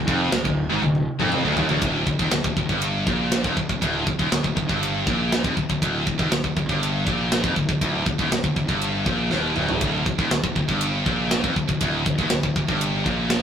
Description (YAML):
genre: heavy metal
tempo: 120 BPM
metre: 4/4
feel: straight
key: D minor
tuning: A4 = 442 Hz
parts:
  - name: heavy high-gain guitar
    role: riff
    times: 0.0-13.4 s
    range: D2 to Bb2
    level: -27 LUFS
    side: right 7 dB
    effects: distortion
  - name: high-gain distorted guitar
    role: riff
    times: 0.0-13.4 s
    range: D2 to Bb2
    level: -26 LUFS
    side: left 6 dB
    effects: distortion
  - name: high-gain distorted guitar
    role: riff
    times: 0.0-1.8 s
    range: D2 to G#2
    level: -24 LUFS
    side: equal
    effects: distortion
  - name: fuzz fingered electric bass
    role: bass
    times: 0.0-13.4 s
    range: D1 to Bb1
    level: -27 LUFS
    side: equal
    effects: overdrive
  - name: tight metal drum kit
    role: drums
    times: 0.1-13.4 s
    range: china cymbal, kick drum, ride cymbal, snare drum, toms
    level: -24 LUFS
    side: equal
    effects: none
room: light reverb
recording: rough rehearsal-room recording, tube saturation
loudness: -20 LUFS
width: side -8 dB against mid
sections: 0.0-1.8 A section; 1.8-13.4 B section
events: drum fill 0.8-1.8, 9.3-9.8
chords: 0.0 Dm